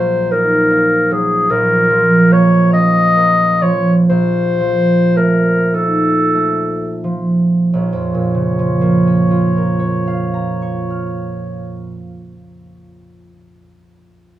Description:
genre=classical, romantic duo for clarinet and harp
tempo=27-52 BPM (dotted quarters)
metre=6/8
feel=rubato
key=Bb minor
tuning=A4 = 440 Hz
part: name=warm clarinet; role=melody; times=0.0-11.9 s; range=Ab4 to Eb5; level=-15 LUFS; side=left 1 dB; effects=none
part: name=concert harp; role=accompaniment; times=0.0-13.1 s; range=Bb1 to F6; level=-14 LUFS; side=right 2 dB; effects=none
room=light reverb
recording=small room ambience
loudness=-12 LUFS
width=side -13 dB against mid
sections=0.0-7.7 A section; 7.7-11.6 B section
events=slowing down 0.3-7.7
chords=0.0 Ebm/Bb; 1.5 Bbm; 4.1 F7/Bb; 7.7 Bbm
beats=0.31 | 1.49 2.71 | 4.08 5.73 | 7.73 9.70

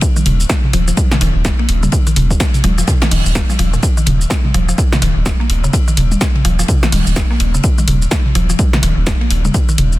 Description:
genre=minimal techno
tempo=126 BPM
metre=4/4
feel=swing 60% on 16ths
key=unclear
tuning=A4 = 438 Hz
part: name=electronic kick drum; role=drums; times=0.0-9.7 s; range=none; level=-15 LUFS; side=equal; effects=none
part: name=open jazz drum kit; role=drums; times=0.0-9.9 s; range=hi-hat, ride cymbal, snare drum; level=-27 LUFS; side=left 2 dB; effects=high-pass filter on cymbals, high-pass filter on hats, high-pass filter on snare, high-pass filter on room
part: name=punchy analog drum machine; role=drums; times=0.0-10.0 s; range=hi-hat, shaker, snare drum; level=-20 LUFS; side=equal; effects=none
part: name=mallet-like synth pluck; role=riff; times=0.2-9.7 s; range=Bb2 to Bb3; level=-22 LUFS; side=left 1 dB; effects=chorus, sidechain pumping, ping-pong delay
part: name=electronic toms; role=percussion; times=0.2-9.9 s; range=none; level=-21 LUFS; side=equal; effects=none
part: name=round analog bass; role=bass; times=0.3-10.0 s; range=Eb1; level=-15 LUFS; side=equal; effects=sidechain pumping
room=little or no reverb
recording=dense, heavily limited modern master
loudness=-12 LUFS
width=side -17 dB against mid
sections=0.0-10.0 A section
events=none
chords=0.0 Eb5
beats=| 0.02 0.50 0.97 1.45 | 1.93 2.40 2.88 3.35 | 3.83 4.31 4.78 5.26 | 5.74 6.21 6.69 7.16 | 7.64 8.12 8.59 9.07 | 9.54

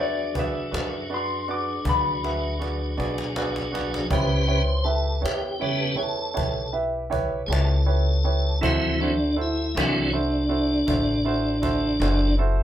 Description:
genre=slow blues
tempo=53 BPM (dotted quarters)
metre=12/8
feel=straight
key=unclear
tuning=A4 = 440 Hz
part: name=electric guitar through a small old amp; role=melody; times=0.0-3.3 s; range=D5 to D6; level=-27 LUFS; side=left 5 dB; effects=spring reverb
part: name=clear upright piano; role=accompaniment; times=0.0-12.6 s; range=E4 to E5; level=-29 LUFS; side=right 3 dB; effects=none
part: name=tonewheel organ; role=sustained chords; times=0.0-12.4 s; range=C#3 to C5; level=-26 LUFS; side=equal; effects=slow rotary speaker, chorus vibrato
part: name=upright bass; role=bass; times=0.0-12.6 s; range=F#1 to F#2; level=-26 LUFS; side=left 1 dB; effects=none
part: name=cajon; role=drums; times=0.4-12.5 s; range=none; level=-30 LUFS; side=equal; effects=none
room=wet small room reverb, RT60 0.6 s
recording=band playing live in one room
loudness=-22 LUFS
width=side -11 dB against mid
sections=0.0-4.1 A section; 4.1-12.6 B section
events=drum fill 1.9-4.1; tonewheel organ solo 4.1-12.6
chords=0.0 E9; 4.1 A9; 8.6 D9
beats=0.72 1.85 2.98 | 4.11 5.24 6.37 7.50 | 8.62 9.75 10.88 12.01

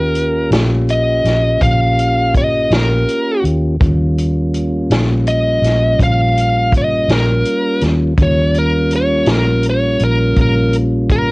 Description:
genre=slow blues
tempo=55 BPM (dotted quarters)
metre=12/8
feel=straight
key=unclear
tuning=A4 = 442 Hz
part: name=smooth overdriven lead guitar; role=melody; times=0.0-11.3 s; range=Bb4 to F5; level=-16 LUFS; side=equal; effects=cassette tape
part: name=mellow tonewheel organ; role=sustained chords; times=0.0-11.3 s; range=G3 to G4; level=-19 LUFS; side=equal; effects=slow rotary speaker, cassette tape
part: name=vintage muted fingered electric bass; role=bass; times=0.0-11.3 s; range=Bb1 to Eb2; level=-16 LUFS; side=equal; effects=none
part: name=vintage drum kit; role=drums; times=0.2-11.3 s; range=hi-hat, kick drum, snare drum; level=-18 LUFS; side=equal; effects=cassette tape
room=light reverb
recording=home recording on cassette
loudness=-12 LUFS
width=side -24 dB against mid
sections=0.0-11.3 A section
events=lead electric guitar solo 0.0-11.3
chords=0.0 Eb7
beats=0.52 1.62 2.71 | 3.81 4.90 5.99 7.09 | 8.18 9.27 10.37

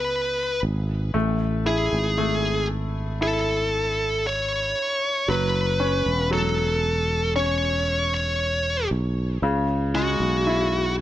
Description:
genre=pop ballad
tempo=58 BPM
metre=4/4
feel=straight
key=unclear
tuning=A4 = 440 Hz
part: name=high-gain lead guitar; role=melody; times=0.0-10.9 s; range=F#4 to C#5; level=-24 LUFS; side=equal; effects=distortion
part: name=bright grand piano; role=accompaniment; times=0.0-11.0 s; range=C#3 to E4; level=-28 LUFS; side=left 2 dB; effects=none
part: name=sustaining fretless electric bass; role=bass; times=0.0-11.0 s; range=E1 to C#2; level=-26 LUFS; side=right 1 dB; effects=none
room=light reverb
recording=none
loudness=-21 LUFS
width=side -13 dB against mid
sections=0.0-11.0 A section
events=none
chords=0.0 E; 1.1 A; 5.3 F#m7; 9.4 C#m7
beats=0.11 | 1.15 2.18 3.22 4.25 | 5.29 6.32 7.36 8.39 | 9.42 10.46

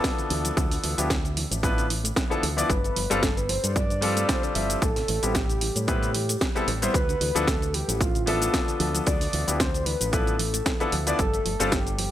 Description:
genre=nu-disco, nu disco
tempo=113 BPM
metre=4/4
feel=swing 55% on 16ths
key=D dorian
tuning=A4 = 440 Hz
part: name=soft octave-layered synth lead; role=melody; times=0.0-12.1 s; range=F4 to E5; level=-30 LUFS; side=equal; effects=chorus, dub echo
part: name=clear concert grand piano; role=accompaniment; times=0.0-11.7 s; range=F3 to E5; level=-28 LUFS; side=left 2 dB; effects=analog delay
part: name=soft round pluck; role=arpeggios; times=0.0-12.1 s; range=B2 to A3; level=-36 LUFS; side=right 2 dB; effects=chorus, sidechain pumping, dub echo
part: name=electronic kick drum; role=drums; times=0.0-11.8 s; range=none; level=-26 LUFS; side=equal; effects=overdrive
part: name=house drum kit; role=drums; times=0.0-12.1 s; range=hi-hat, shaker, snare drum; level=-29 LUFS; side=right 1 dB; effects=overdrive, analog delay
part: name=fingered electric bass with an envelope filter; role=bass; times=0.3-12.1 s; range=G1 to A2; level=-29 LUFS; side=equal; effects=none
room=light reverb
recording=echo-heavy mix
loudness=-22 LUFS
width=side -12 dB against mid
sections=0.0-12.1 A section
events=none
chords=0.0 Dm69; 2.7 G9sus4; 4.8 Am9; 6.9 Dm69; 11.2 G9sus4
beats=0.04 | 0.57 1.10 1.63 2.16 | 2.69 3.23 3.76 4.29 | 4.82 5.35 5.88 6.41 | 6.94 7.47 8.01 8.54 | 9.07 9.60 10.13 10.66 | 11.19 11.72

